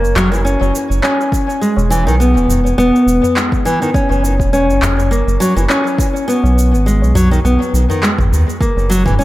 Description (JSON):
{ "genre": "organic downtempo", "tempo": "103 BPM", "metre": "4/4", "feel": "swing 55% on 16ths", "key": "F# mixolydian", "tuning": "A4 = 440 Hz", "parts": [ { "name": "nylon-string guitar", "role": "arpeggios", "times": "0.0-9.2 s", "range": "D#3 to C#4", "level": "-14 LUFS", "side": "equal", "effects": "tape echo, shimmer reverb" }, { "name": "round analog bass", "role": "bass", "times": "0.0-9.2 s", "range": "E1 to D#2", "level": "-14 LUFS", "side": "equal", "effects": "sidechain pumping" }, { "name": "deep house drum kit", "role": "drums", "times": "0.0-9.2 s", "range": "cabasa, handclaps, toms", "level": "-22 LUFS", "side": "equal", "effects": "overdrive, tape echo" }, { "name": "tabla", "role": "percussion", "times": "0.0-9.0 s", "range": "none", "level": "-24 LUFS", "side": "left 1 dB", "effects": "none" }, { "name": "electronic kick drum", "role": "drums", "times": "1.3-9.2 s", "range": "none", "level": "-17 LUFS", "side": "equal", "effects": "overdrive" } ], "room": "moderate spring reverb, RT60 2.4 s", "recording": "echo-heavy mix", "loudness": "-11 LUFS", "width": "side -16 dB against mid", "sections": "0.0-9.2 A section", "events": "none", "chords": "0.0 F#5; 1.6 E; 3.9 F#7(no3); 6.3 B6; 8.6 F#7" }